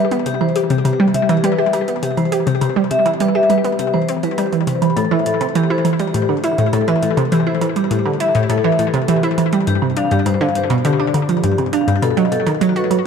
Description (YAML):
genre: ambient, sequencer-driven space music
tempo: 102 BPM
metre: 4/4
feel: straight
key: A minor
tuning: A4 = 439 Hz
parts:
  - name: vibraphone with medium mallets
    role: arpeggios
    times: 0.0-12.9 s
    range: F#4 to B5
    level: -20 LUFS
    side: left 3 dB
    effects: auto-pan, ping-pong delay
  - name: analog pluck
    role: riff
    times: 0.0-13.0 s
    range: G2 to G4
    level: -16 LUFS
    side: right 1 dB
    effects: chorus, ping-pong delay
  - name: electronic hi-hat and woodblock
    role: percussion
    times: 0.1-13.0 s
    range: none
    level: -31 LUFS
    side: right 4 dB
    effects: ping-pong delay
room: wet plate reverb, RT60 3.5 s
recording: dreamy mix soaked in reverb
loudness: -14 LUFS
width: side -6 dB against mid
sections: 0.0-13.1 A section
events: none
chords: 0.0 Cmaj7; 5.0 A7(no3); 9.7 G7sus4; 12.0 B7